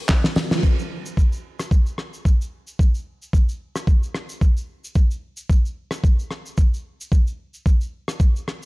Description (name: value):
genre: nu-disco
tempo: 111 BPM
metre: 4/4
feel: swing 55% on 16ths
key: none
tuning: none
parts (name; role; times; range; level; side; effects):
- damped 70s drum kit; drums; 0.1-8.7 s; crash cymbal, handclaps, hi-hat, rim click, shaker, snare drum; -26 LUFS; equal; studio reverb
- electronic kick drum; drums; 0.1-8.3 s; none; -16 LUFS; equal; overdrive, studio reverb
- tambourine; percussion; 0.1-0.6 s; none; -44 LUFS; equal; none
room: light reverb, small room ambience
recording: dark, warm production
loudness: -19 LUFS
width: side -22 dB against mid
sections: 0.6-8.7 A section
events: drum fill 0.1-0.6; band accent 0.5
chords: none